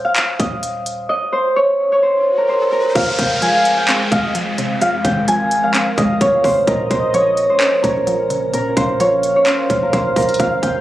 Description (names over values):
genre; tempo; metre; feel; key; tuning
hip hop, trap; 129 BPM; 4/4; half-time; F minor; A4 = 440 Hz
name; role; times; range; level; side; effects
Celtic harp; melody; 0.0-10.8 s; Bb4 to Ab5; -16 LUFS; equal; low-pass filter
warm 808-style bass; bass; 0.0-10.8 s; Eb1 to Bb1; -30 LUFS; right 1 dB; none
trap drum kit; drums; 0.2-10.7 s; handclaps, hi-hat, kick drum; -20 LUFS; equal; none
riser and downlifter; sound effects; 2.1-6.7 s; none; -25 LUFS; equal; none
warm velvety synth lead; second line; 3.0-10.8 s; Db5 to F5; -24 LUFS; left 1 dB; chorus, ping-pong delay
mallet-like synth pluck; accompaniment; 3.0-10.8 s; F2 to Db4; -24 LUFS; right 1 dB; chorus, low-pass filter
glassy FM pad; sustained chords; 3.4-10.8 s; F3 to Bb4; -26 LUFS; equal; ensemble chorus, built-in reverb
room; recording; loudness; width
light reverb; recorded on a phone in the room, club reverb, compression; -14 LUFS; side -14 dB against mid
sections
0.0-3.0 A section; 3.0-10.8 B section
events
riser 2.1-3.0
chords
0.0 Eb69; 3.0 Fm; 6.7 Bbm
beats
0.16 0.63 | 1.09 1.56 2.02 2.49 | 2.95 3.42 3.88 4.35 | 4.81 5.28 5.74 6.21 | 6.67 7.14 7.61 8.07 | 8.54 9.00 9.46 9.93 | 10.40